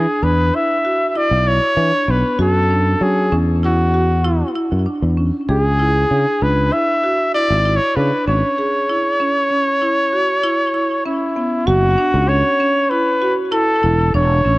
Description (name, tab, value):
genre	progressive instrumental, band music in an uneven meter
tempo	97 BPM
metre	5/4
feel	straight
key	unclear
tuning	A4 = 443 Hz
part	clear trumpet	melody	0.0-14.6 s	E4 to E5	-17 LUFS	equal	ping-pong delay
part	marimba with hard mallets	arpeggios	0.0-14.6 s	B3 to G#4	-21 LUFS	right 1 dB	ping-pong delay
part	sustaining fretless electric bass	bass	0.0-14.6 s	E1 to F#3	-16 LUFS	equal	none
room	small room ambience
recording	worn, warbling old tape, cassette tape, warbly pitch drift, faint mains hum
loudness	-14 LUFS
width	side -20 dB against mid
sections	0.0-11.7 A section; 11.7-14.6 B section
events	none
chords	0.0 E7(no3); 2.4 F#m7; 5.5 C#m; 11.7 F#m